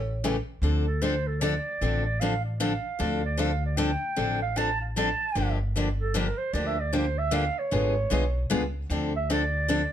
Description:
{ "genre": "acoustic string swing (jazz manouche)", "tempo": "152 BPM", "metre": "3/4", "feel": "swing 62% on 8ths", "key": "D minor", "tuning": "A4 = 442 Hz", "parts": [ { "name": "growling clarinet", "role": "second line", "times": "0.0-9.9 s", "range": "A4 to A5", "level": "-30 LUFS", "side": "right 4 dB", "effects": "none" }, { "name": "upright bass", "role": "bass", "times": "0.0-9.8 s", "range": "G1 to D2", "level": "-28 LUFS", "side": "equal", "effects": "none" }, { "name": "picked steel-string acoustic guitar", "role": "accompaniment", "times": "0.2-9.8 s", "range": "C#3 to A4", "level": "-28 LUFS", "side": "left 2 dB", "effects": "none" } ], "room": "light reverb", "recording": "none", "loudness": "-24 LUFS", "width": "side -10 dB against mid", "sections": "0.6-9.9 A section", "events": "clarinet solo 0.6-9.9", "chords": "0.0 A7; 0.6 Dm7; 5.4 Gm7; 7.7 G#dim7; 8.9 Dm7", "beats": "0.24 | 0.63 1.03 1.42 | 1.82 2.21 2.60 | 3.00 3.39 3.79 | 4.18 4.57 4.97 | 5.36 5.76 6.15 | 6.54 6.94 7.33 | 7.73 8.12 8.51 | 8.91 9.30 9.70" }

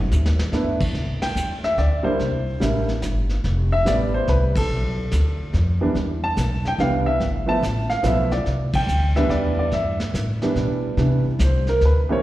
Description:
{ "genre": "jazz piano trio", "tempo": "143 BPM", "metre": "3/4", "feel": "swing 66% on 8ths", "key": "C major", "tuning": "A4 = 440 Hz", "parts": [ { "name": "warm upright piano", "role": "melody", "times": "0.0-12.2 s", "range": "E3 to A5", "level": "-22 LUFS", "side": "right 1 dB", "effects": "plate reverb, slapback echo" }, { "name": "upright bass", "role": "bass", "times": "0.0-12.2 s", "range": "F1 to C3", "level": "-21 LUFS", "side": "equal", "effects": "none" }, { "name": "vintage brush drum kit", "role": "drums", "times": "0.1-12.2 s", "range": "brushed snare drum, crash cymbal, hi-hat, kick drum, ride cymbal, snare drum, toms", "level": "-29 LUFS", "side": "equal", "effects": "none" } ], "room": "moderate club reverb, RT60 0.8 s", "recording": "live gig heard through the venue's PA, recital hall reverb", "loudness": "-19 LUFS", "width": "side -15 dB against mid", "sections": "0.9-11.0 A section; 11.0-12.2 B section", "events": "drum fill 0.0-0.5; band accent 1.2, 4.5, 8.7; upright piano solo 11.0-12.2", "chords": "0.0 B (rootless); 0.5 G; 0.9 C; 2.2 C5; 3.5 Fmaj9#11; 4.7 G9 (rootless); 6.0 Cmaj7; 7.2 G13; 8.5 Cmaj7", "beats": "0.11 0.53 | 0.95 1.36 1.78 | 2.20 2.62 3.03 | 3.45 3.87 4.29 | 4.70 5.12 5.54 | 5.96 6.38 6.79 | 7.21 7.63 8.05 | 8.47 8.89 9.31 | 9.73 10.15 10.57 | 10.99 11.40 11.82" }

